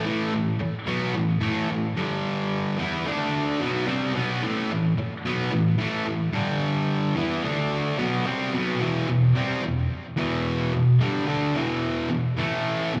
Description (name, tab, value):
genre	rock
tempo	110 BPM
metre	4/4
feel	straight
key	E minor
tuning	A4 = 438 Hz
part	fuzz guitar	solo	0.0-13.0 s	E2 to E4	-25 LUFS	equal	distortion, tape echo
room	moderate club reverb, RT60 0.6 s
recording	live gig heard through the venue's PA, club reverb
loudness	-25 LUFS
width	mono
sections	0.0-8.8 A section; 8.8-13.0 B section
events	none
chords	0.0 A5; 2.0 G5; 2.8 E5; 3.1 D5; 3.6 A5; 6.3 G5; 7.2 E5; 7.4 D5; 8.0 Gmaj7/B; 8.8 Em; 12.4 A5